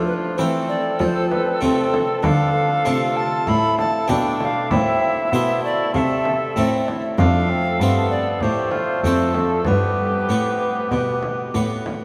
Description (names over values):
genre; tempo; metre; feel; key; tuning
classical, renaissance-style consort dance; 97 BPM; 4/4; straight; unclear; A4 = 440 Hz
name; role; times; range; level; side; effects
tenor recorder; melody; 0.0-11.5 s; A4 to B5; -25 LUFS; equal; none
warm cor anglais; second line; 0.0-11.9 s; D4 to A4; -30 LUFS; equal; none
harpsichord; accompaniment; 0.0-12.0 s; F2 to F5; -27 LUFS; equal; none
warm bassoon; accompaniment; 0.0-11.9 s; A3 to F4; -28 LUFS; equal; none
rich cello; bass; 0.0-12.0 s; F2 to F3; -26 LUFS; equal; none
frame drum; percussion; 1.0-12.0 s; none; -32 LUFS; equal; none
room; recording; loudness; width
wet cathedral reverb, RT60 6.2 s; in a vast, echoing space; -20 LUFS; mono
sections
0.0-12.0 A section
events
none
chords
0.0 F; 2.2 Dm; 4.7 Am; 7.2 F; 9.7 G